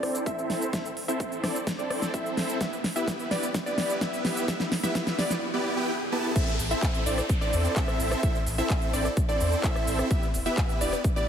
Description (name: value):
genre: EDM, festival progressive house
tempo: 128 BPM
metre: 4/4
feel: straight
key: A minor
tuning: A4 = 440 Hz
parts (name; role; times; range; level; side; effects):
- plucky unison lead; arpeggios; 0.0-11.3 s; D5 to E5; -33 LUFS; equal; sidechain pumping, ping-pong delay
- supersaw chords; riff; 0.0-11.3 s; B3 to A5; -29 LUFS; equal; sidechain pumping, low-pass filter, ping-pong delay
- big-room dance drum kit; drums; 0.0-11.3 s; crash cymbal, handclaps, hi-hat, rim click, shaker, snare drum; -31 LUFS; equal; none
- riser and downlifter; sound effects; 0.9-10.1 s; none; -40 LUFS; right 1 dB; none
- electronic kick drum; drums; 0.3-11.1 s; none; -28 LUFS; equal; high-pass filter on kick
- saturated sub bass; bass; 6.6-11.0 s; E1 to E2; -29 LUFS; equal; tube saturation, sidechain pumping
room: moderate lush hall reverb, RT60 2.2 s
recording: heavily compressed radio sound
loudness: -25 LUFS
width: side -8 dB against mid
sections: 0.0-6.4 A section; 6.4-11.3 B section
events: build-up 0.0-6.4; drum fill 0.0-5.4; filter sweep on supersaw synth 0.0-6.4; filter sweep on digital synth lead 0.0-6.4; drop 6.4-11.3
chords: 0.0 Am; 2.6 Em; 6.4 Am; 10.1 Em